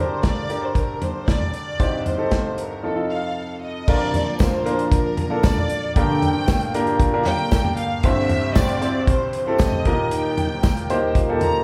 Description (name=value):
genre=piano-driven pop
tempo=115 BPM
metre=4/4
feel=straight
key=G minor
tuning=A4 = 442 Hz
part: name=warm studio violin section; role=melody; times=0.0-11.6 s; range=A4 to Bb5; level=-29 LUFS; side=equal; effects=none
part: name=bright upright piano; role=accompaniment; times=0.0-11.6 s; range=C2 to C5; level=-26 LUFS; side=equal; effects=none
part: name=modern studio drum kit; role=drums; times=0.2-11.5 s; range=crash cymbal, hi-hat, kick drum, snare drum, toms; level=-24 LUFS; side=equal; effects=none
part: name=mellow French horn section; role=second line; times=3.9-11.6 s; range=Bb2 to Eb4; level=-29 LUFS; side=equal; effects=none
part: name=airy breathy pad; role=sustained chords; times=3.9-11.6 s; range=C2 to D4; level=-35 LUFS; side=equal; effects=none
part: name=tambourine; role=percussion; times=4.4-10.8 s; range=none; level=-44 LUFS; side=equal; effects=none
room=wet large studio reverb, RT60 0.9 s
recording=band playing live in one room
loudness=-21 LUFS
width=mono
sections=0.0-3.9 A section; 3.9-11.6 B section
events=break 2.8-3.9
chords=0.0 Gm; 1.8 Cm; 2.8 F7; 3.9 Bb; 6.0 Gm; 8.0 C; 9.9 Eb